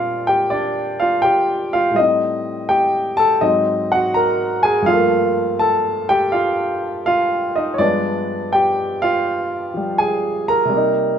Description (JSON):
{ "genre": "solo jazz", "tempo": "82 BPM", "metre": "4/4", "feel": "swing 68% on 8ths", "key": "unclear", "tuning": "A4 = 440 Hz", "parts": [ { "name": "warm baby grand piano", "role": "solo", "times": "0.0-11.2 s", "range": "G2 to Bb5", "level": "-16 LUFS", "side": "equal", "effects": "none" } ], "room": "light reverb", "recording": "minimal, uncompressed stereo recording", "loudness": "-16 LUFS", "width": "side -8 dB against mid", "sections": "0.0-11.2 A section", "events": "none", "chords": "0.0 Bb69; 2.0 Am7b5; 3.4 Ab7; 4.9 Gm9; 7.8 G7b9" }